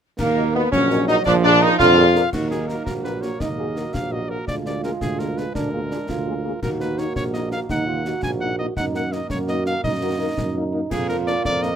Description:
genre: military-style march for wind band.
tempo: 112 BPM (dotted quarters).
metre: 6/8.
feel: straight.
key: Eb minor.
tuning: A4 = 440 Hz.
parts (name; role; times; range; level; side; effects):
warm cornet; melody; 0.2-11.8 s; Gb4 to Ab5; -28 LUFS; equal; none.
clear euphonium; second line; 0.2-11.8 s; D3 to Ab4; -26 LUFS; right 5 dB; none.
mellow large flute ensemble; second line; 0.2-2.3 s; Bb4 to F5; -28 LUFS; left 2 dB; none.
clear trombone section; sustained chords; 0.2-11.8 s; D3 to F4; -23 LUFS; equal; none.
warm tuba; bass; 0.2-11.8 s; Bb1 to Gb2; -25 LUFS; right 2 dB; none.
concert snare drum, clash cymbals and concert bass drum; drums; 0.2-11.8 s; none; -31 LUFS; left 2 dB; none.
mellow French horn section; accompaniment; 0.4-11.7 s; Bb3 to Eb5; -29 LUFS; left 5 dB; none.
room: little or no reverb.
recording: close, detailed microphones.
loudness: -19 LUFS.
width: side -8 dB against mid.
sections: 0.2-2.3 A section; 2.3-11.8 B section.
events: none.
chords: 0.2 Ebm; 1.3 Bb7; 2.3 Ebm; 4.5 Bb7/D; 6.6 Ebm; 8.8 Ebm/Gb; 10.9 Bb/F.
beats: | 0.19 0.73 | 1.26 1.80 | 2.33 2.87 | 3.40 3.94 | 4.48 5.01 | 5.55 6.08 | 6.62 7.16 | 7.69 8.23 | 8.77 9.30 | 9.84 10.38 | 10.91 11.45.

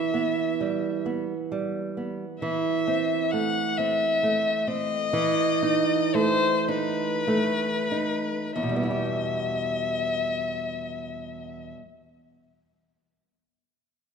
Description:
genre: romantic duo for violin and classical guitar.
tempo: 29-45 BPM (dotted quarters).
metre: 6/8.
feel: rubato.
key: E minor.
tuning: A4 = 436 Hz.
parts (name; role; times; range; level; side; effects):
warm violin; melody; 0.0-11.7 s; B4 to F#5; -26 LUFS; left 4 dB; none.
nylon-string guitar; accompaniment; 0.0-12.1 s; E2 to G4; -27 LUFS; right 4 dB; none.
room: moderate concert hall reverb, RT60 2.2 s.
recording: minimal, uncompressed stereo recording.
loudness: -23 LUFS.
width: side -6 dB against mid.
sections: 0.0-2.4 A section; 2.4-8.6 B section; 8.6-12.2 C section.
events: slowing down 1.0-8.6.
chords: 0.0 Em; 2.4 Am/E; 5.1 B7/E; 8.6 Em.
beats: 1.04 | 2.42 3.78 | 5.15 6.69 | 8.56 10.38.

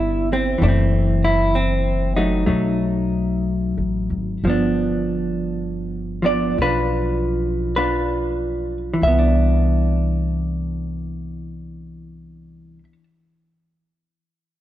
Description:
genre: jazz ballad.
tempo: 45-66 BPM.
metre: 4/4.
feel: swing 68% on 8ths.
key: C major.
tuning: A4 = 440 Hz.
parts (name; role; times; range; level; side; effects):
hollow-body jazz guitar; accompaniment; 0.0-13.0 s; E3 to E5; -20 LUFS; equal; none.
upright bass; bass; 0.0-12.8 s; F#1 to C2; -22 LUFS; equal; none.
room: moderate plate reverb, RT60 2.5 s.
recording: heard from further back in the room.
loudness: -18 LUFS.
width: side -13 dB against mid.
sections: 0.0-4.5 A section; 4.5-9.0 B section; 9.0-14.3 C section.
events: slowing down 0.6-9.0.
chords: 0.0 Cmaj7; 0.6 F#m7b5; 2.5 B7; 4.5 G7; 9.0 Cmaj9.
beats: | 0.61 1.53 2.47 3.44 | 4.46 5.50 6.59 7.76 | 9.02 10.33 11.63 12.94.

